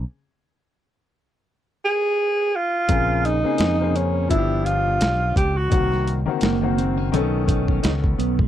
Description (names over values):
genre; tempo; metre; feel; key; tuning
hip hop, jazz-hop; 85 BPM; 4/4; swing 57% on 16ths; unclear; A4 = 439 Hz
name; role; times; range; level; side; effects
fretless electric bass; bass; 0.0-8.5 s; Gb1 to F2; -23 LUFS; equal; none
breathy tenor saxophone; melody; 1.8-6.3 s; Db4 to Ab4; -21 LUFS; right 2 dB; none
clear grand piano; accompaniment; 2.9-8.4 s; C3 to C5; -25 LUFS; left 10 dB; none
dusty soul sampler-style drum kit; drums; 2.9-8.5 s; hi-hat, kick drum, snare drum; -22 LUFS; equal; overdrive
mellow electric guitar; second line; 6.4-8.5 s; Ab3 to D#4; -26 LUFS; right 17 dB; spring reverb
room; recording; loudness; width
little or no reverb; dry, close 1970s-style studio recording, lossy compression artefacts; -18 LUFS; side -11 dB against mid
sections
0.0-2.9 A section; 2.9-8.5 B section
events
break 0.1-2.9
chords
0.0 N.C.; 2.9 Bbm9; 4.3 G7; 5.7 Cm7b5; 7.1 B9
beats
| 0.07 0.77 1.48 2.19 | 2.89 3.60 4.30 5.01 | 5.71 6.42 7.13 7.83